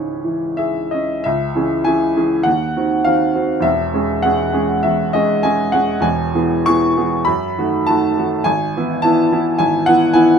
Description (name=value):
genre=classical, romantic character piece for solo piano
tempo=100 BPM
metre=4/4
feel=uneven beats, rubato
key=C# minor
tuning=A4 = 440 Hz
part: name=clear upright piano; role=solo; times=0.0-10.4 s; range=E1 to C#6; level=-14 LUFS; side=equal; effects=none
room=light reverb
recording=minimal, uncompressed stereo recording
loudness=-14 LUFS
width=side -7 dB against mid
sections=0.0-1.3 A section; 1.3-10.4 B section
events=none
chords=0.0 C#m; 2.5 Cdim/Eb; 3.7 C#m/E; 6.0 E; 7.3 D#dim/F#; 8.5 E/G#